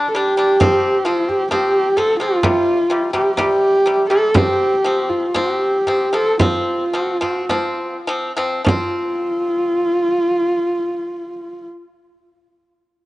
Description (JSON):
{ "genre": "mongolian traditional, Mongolian folk", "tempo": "50-66 BPM", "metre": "4/4", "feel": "straight", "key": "F gong mode", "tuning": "A4 = 437 Hz", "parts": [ { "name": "pipa", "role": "arpeggios", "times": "0.0-11.7 s", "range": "C3 to D4", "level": "-22 LUFS", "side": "left 1 dB", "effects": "cassette tape" }, { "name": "warm horsehead fiddle", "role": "melody", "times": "0.1-11.7 s", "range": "F4 to A4", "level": "-17 LUFS", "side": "equal", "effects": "none" }, { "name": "frame drum", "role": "percussion", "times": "0.6-9.2 s", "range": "none", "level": "-18 LUFS", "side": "right 1 dB", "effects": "none" } ], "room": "light reverb, small room ambience", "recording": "home recording on cassette, nothing above 10.4 kHz", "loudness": "-15 LUFS", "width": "side -18 dB against mid", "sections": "0.0-8.7 A section; 8.7-13.1 B section", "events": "slowing down 0.6-8.7", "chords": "0.0 G5; 0.6 F5; 2.4 C5; 4.3 F5", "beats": "| 0.60 1.51 2.43 3.37 | 4.34 5.35 6.39 7.50 | 8.66 9.87 11.07" }